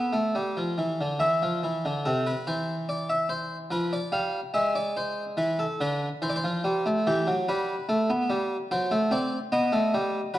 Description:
classical, baroque-style two-part invention for harpsichord; 72 BPM; 3/4; straight; A minor; A4 = 435 Hz
harpsichord; solo; 0.0-10.4 s; C3 to F5; -24 LUFS; equal
moderate recital hall reverb, RT60 1.7 s; worn, warbling old tape, cassette tape, warbly pitch drift; -24 LUFS; side -14 dB against mid
0.0-2.1 A section; 2.1-10.4 B section
0.0 A5; 1.2 Dmadd9; 2.1 Am/C; 3.7 Bdim/F; 4.6 E/G#; 6.2 Am/E; 7.1 Em; 8.7 F#dim; 9.5 B
0.36 1.21 | 2.06 2.90 3.73 | 4.57 5.40 6.23 | 7.06 7.89 8.71 | 9.53 10.35

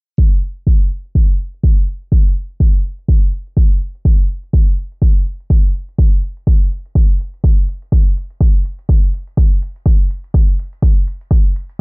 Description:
afro house; 124 BPM; 4/4; swing 55% on 16ths
electronic kick drum; drums; 0.2-11.4 s; -11 LUFS; equal
shaker; drums; 0.2-11.8 s; -58 LUFS; right 1 dB
little or no reverb; low-pass filter; -12 LUFS; side -30 dB against mid
0.2-11.8 A section
filter sweep 0.2-11.8
| 0.18 0.67 1.15 1.64 | 2.12 2.60 3.09 3.57 | 4.05 4.54 5.02 5.51 | 5.99 6.47 6.96 7.44 | 7.92 8.41 8.89 9.38 | 9.86 10.34 10.83 11.31

